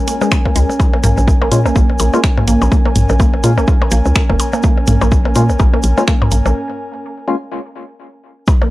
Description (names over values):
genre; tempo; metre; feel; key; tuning
minimal techno; 125 BPM; 4/4; swing 58% on 16ths; Bb minor; A4 = 439 Hz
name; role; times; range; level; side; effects
airy breathy pad; texture; 0.0-8.7 s; Db4 to Ab5; -22 LUFS; equal; chorus, sidechain pumping
resonant blip pluck; riff; 0.1-8.7 s; Ab3 to Bb3; -21 LUFS; right 1 dB; phaser, sidechain pumping, analog delay
garage drum kit; drums; 0.1-6.4 s; finger snaps, hi-hat; -18 LUFS; equal; overdrive, small room ambience
egg shaker; percussion; 0.1-8.6 s; none; -29 LUFS; right 1 dB; none
electronic percussion blips and toms; percussion; 0.2-8.7 s; none; -19 LUFS; left 1 dB; small room ambience, tape echo
electronic kick drum; drums; 0.3-8.6 s; none; -13 LUFS; equal; overdrive, small room ambience
hollow knocking FM bass; bass; 0.6-6.5 s; F1 to Bb2; -14 LUFS; equal; sidechain pumping
percussive organ stab; stabs; 1.5-7.4 s; Ab3 to F4; -20 LUFS; left 2 dB; lush chorus, vintage 12-bit sampler grit, tape echo
room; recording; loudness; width
little or no reverb; dry, gritty hardware recording, cassette tape; -11 LUFS; side -17 dB against mid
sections
0.0-8.5 A section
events
break 6.6-8.5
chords
0.0 Bbm7